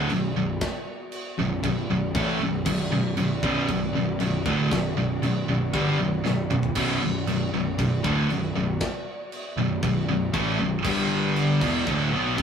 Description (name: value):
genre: heavy metal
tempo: 117 BPM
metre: 4/4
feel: straight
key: B minor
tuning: A4 = 439 Hz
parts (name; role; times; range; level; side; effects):
- muted studio string section; sustained chords; 0.0-12.4 s; F#3 to F#5; -36 LUFS; left 1 dB; none
- distorted electric guitar; riff; 0.0-12.4 s; B1 to B3; -26 LUFS; left 4 dB; distortion
- scooped high-gain guitar; riff; 0.0-12.4 s; B1 to B3; -26 LUFS; right 4 dB; distortion
- fuzz picked electric bass; bass; 0.0-12.4 s; B0 to B1; -33 LUFS; left 1 dB; overdrive
- tight metal drum kit; drums; 0.1-12.4 s; china cymbal, crash cymbal, kick drum, snare drum, toms; -32 LUFS; equal; none
room: wet studio reverb, RT60 0.5 s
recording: rough rehearsal-room recording, tube saturation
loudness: -22 LUFS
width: side -7 dB against mid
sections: 0.0-12.4 A section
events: half time 0.0-12.4; drum fill 6.3-6.8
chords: 0.0 Bm; 10.9 G5; 11.6 Bm